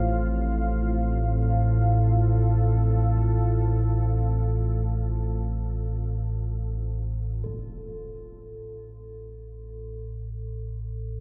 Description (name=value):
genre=dark ambient drone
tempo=free time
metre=none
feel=none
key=unclear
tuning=A4 = 440 Hz
part: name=deep dark ambient pad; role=sustained chords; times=0.0-7.5 s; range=A2 to F5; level=-36 LUFS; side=equal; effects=chorus, built-in reverb
part: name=deep rumbling drone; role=drone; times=0.0-11.2 s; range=A1 to A2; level=-27 LUFS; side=equal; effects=built-in reverb
part: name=quartz singing bowl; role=texture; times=0.0-11.2 s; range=A4 to C5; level=-47 LUFS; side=equal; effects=none
part: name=impact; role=percussion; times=7.5-7.7 s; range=none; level=-47 LUFS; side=equal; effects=low-pass filter on sfx
room=light reverb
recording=none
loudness=-25 LUFS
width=mono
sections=0.0-7.5 A section; 7.5-11.2 B section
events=fade-out on ambient pad 0.0-7.5; filter sweep on synth drone 7.5-11.2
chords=0.0 Fsus2/A; 7.5 N.C.